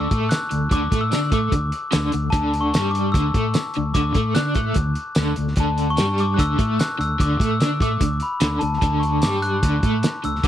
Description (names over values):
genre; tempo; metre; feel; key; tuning
indie rock; 148 BPM; 4/4; straight; D major; A4 = 440 Hz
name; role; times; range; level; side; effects
glockenspiel with rubber mallets; melody; 0.0-10.5 s; A5 to F#6; -25 LUFS; left 2 dB; none
overdriven electric guitar; riff; 0.0-10.5 s; D3 to D4; -24 LUFS; equal; tremolo
fingered electric bass; bass; 0.0-10.5 s; D2 to D3; -24 LUFS; equal; none
cloth-damped thuddy drum kit; drums; 0.1-10.5 s; hi-hat, kick drum, snare drum, tambourine; -22 LUFS; equal; none
room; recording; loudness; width
little or no reverb; dry, close 1970s-style studio recording; -18 LUFS; side -11 dB against mid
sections
0.0-10.5 A section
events
none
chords
0.0 D